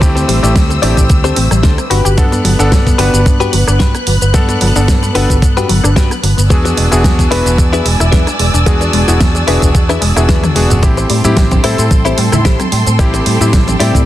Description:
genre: nu-disco, nu disco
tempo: 111 BPM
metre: 4/4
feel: swing 54% on 16ths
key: A dorian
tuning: A4 = 440 Hz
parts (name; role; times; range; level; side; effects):
- bright electric grand piano; accompaniment; 0.0-14.1 s; A3 to F#5; -17 LUFS; left 1 dB; sidechain pumping, slapback echo
- clear studio string section; sustained chords; 0.0-14.1 s; A4 to F#6; -21 LUFS; right 2 dB; vintage 12-bit sampler grit, sidechain pumping
- wide unison pluck; arpeggios; 0.0-14.0 s; F#3 to G4; -20 LUFS; left 3 dB; cassette tape, sidechain pumping, tape echo
- direct-recorded clean electric guitar; riff; 0.0-14.0 s; D4 to D5; -19 LUFS; left 5 dB; analog chorus, slapback echo
- fingered electric bass; bass; 0.0-14.0 s; E1 to A2; -14 LUFS; equal; tube saturation
- electronic kick drum; drums; 0.0-14.0 s; none; -11 LUFS; equal; studio reverb
- pop drum kit; drums; 0.0-14.1 s; hi-hat, rim click, shaker, snare drum, toms; -18 LUFS; right 1 dB; studio reverb
- congas; percussion; 11.2-13.8 s; none; -20 LUFS; right 3 dB; none
room: light reverb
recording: dense, heavily limited modern master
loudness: -9 LUFS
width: side -14 dB against mid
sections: 0.0-14.1 A section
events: drum fill 10.3-10.8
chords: 0.0 D7sus4; 1.9 Gmaj7; 6.5 E7; 10.8 Am7

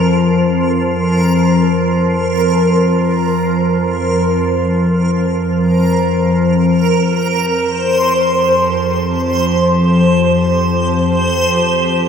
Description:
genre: dark ambient drone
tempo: free time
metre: none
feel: none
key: unclear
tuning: A4 = 440 Hz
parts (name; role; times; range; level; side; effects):
- organ-like drone; drone; 0.0-12.1 s; F2 to F3; -13 LUFS; left 1 dB; ensemble chorus, built-in reverb
- backwards swelling texture; texture; 0.0-12.1 s; Bb4 to C5; -16 LUFS; right 1 dB; built-in reverb
- warm studio cello section; sustained chords; 6.6-12.1 s; F3 to G4; -30 LUFS; equal; none
room: wet cathedral reverb, RT60 5.1 s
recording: none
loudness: -12 LUFS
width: side -7 dB against mid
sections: 0.0-6.6 A section; 6.6-12.1 B section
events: filter sweep on synth drone 6.6-12.1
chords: 0.0 Fsus4; 6.6 F5

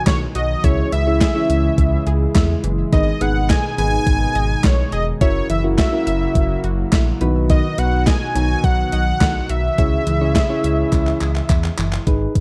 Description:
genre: synth-pop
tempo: 105 BPM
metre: 4/4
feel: straight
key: unclear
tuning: A4 = 440 Hz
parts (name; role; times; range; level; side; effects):
- unison lead; melody; 0.0-11.5 s; C#5 to G#5; -25 LUFS; equal; none
- chorused pulse-width pad; sustained chords; 0.0-12.0 s; B2 to G#4; -28 LUFS; equal; none
- analog pluck; arpeggios; 0.0-12.0 s; D#3 to E5; -32 LUFS; equal; chorus, tape echo
- smooth gliding synth bass; bass; 0.1-12.4 s; E1 to E2; -22 LUFS; equal; none
- gated 80s digital drum machine; drums; 0.1-12.4 s; handclaps, hi-hat, kick drum, snare drum; -20 LUFS; equal; gated reverb, gated reverb snare
- soft electric-piano-like synth keys; accompaniment; 0.6-12.3 s; B3 to C#5; -25 LUFS; equal; chorus
room: moderate studio ambience, RT60 0.5 s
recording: dark, warm production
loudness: -18 LUFS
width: mono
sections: 0.0-12.1 A section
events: drum fill 10.9-12.1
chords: 0.0 B; 0.6 C#m; 2.9 G#m; 5.2 F#7; 7.2 B; 9.8 C#m

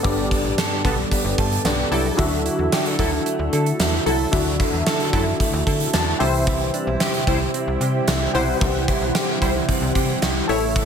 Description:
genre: 1980s-style pop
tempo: 112 BPM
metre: 4/4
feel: straight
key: unclear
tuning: A4 = 440 Hz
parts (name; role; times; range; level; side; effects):
- warm analog keys; accompaniment; 0.0-10.8 s; G2 to A5; -24 LUFS; left 2 dB; chorus
- direct-recorded clean electric guitar; riff; 0.0-10.8 s; E3 to A4; -27 LUFS; right 6 dB; lush chorus, ping-pong delay
- slap-like FM bass; bass; 0.0-10.8 s; G1 to D3; -25 LUFS; equal; none
- gated 80s drum kit; drums; 0.0-10.8 s; hi-hat, kick drum, snare drum, tambourine; -22 LUFS; equal; gated reverb
- funky polysynth comp; stabs; 0.8-10.7 s; D3 to C#5; -26 LUFS; left 1 dB; chorus
- string machine, violas; sustained chords; 6.5-10.8 s; C3 to E4; -28 LUFS; equal; phaser, ensemble chorus
room: light reverb, small room ambience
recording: none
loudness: -18 LUFS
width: side -7 dB against mid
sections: 0.0-10.8 A section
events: synth keys fill 5.7-6.5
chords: 0.0 Gadd9; 2.2 Dadd9; 6.2 C

